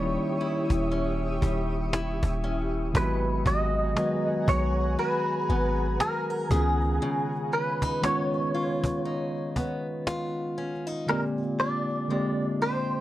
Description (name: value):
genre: contemporary R&B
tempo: 59 BPM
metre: 4/4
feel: swing 58% on 16ths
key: G# minor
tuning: A4 = 440 Hz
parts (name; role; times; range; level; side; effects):
- direct-recorded clean electric guitar; melody; 0.0-13.0 s; G#4 to D#5; -29 LUFS; equal; ensemble chorus, ping-pong delay
- mellow tine electric piano; accompaniment; 0.0-13.0 s; D3 to G4; -30 LUFS; equal; medium stereo tremolo
- granular cloud pad; sustained chords; 0.0-7.0 s; G4 to D#6; -36 LUFS; right 1 dB; built-in reverb
- picked steel-string acoustic guitar; arpeggios; 0.0-13.0 s; A#2 to A#4; -33 LUFS; left 2 dB; none
- warm 808-style bass; bass; 0.0-7.0 s; D#1 to C#2; -28 LUFS; equal; none
- cajon; drums; 0.4-11.5 s; none; -29 LUFS; equal; none
room: light reverb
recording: worn, warbling old tape, cassette tape, warbly pitch drift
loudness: -25 LUFS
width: side -14 dB against mid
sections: 0.0-13.0 A section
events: none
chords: 0.0 D#7b9; 3.0 G#m9; 6.5 C#9; 11.1 A#13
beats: 0.92 1.93 | 2.95 3.97 4.98 6.00 | 7.02 8.04 9.05 10.07 | 11.09 12.10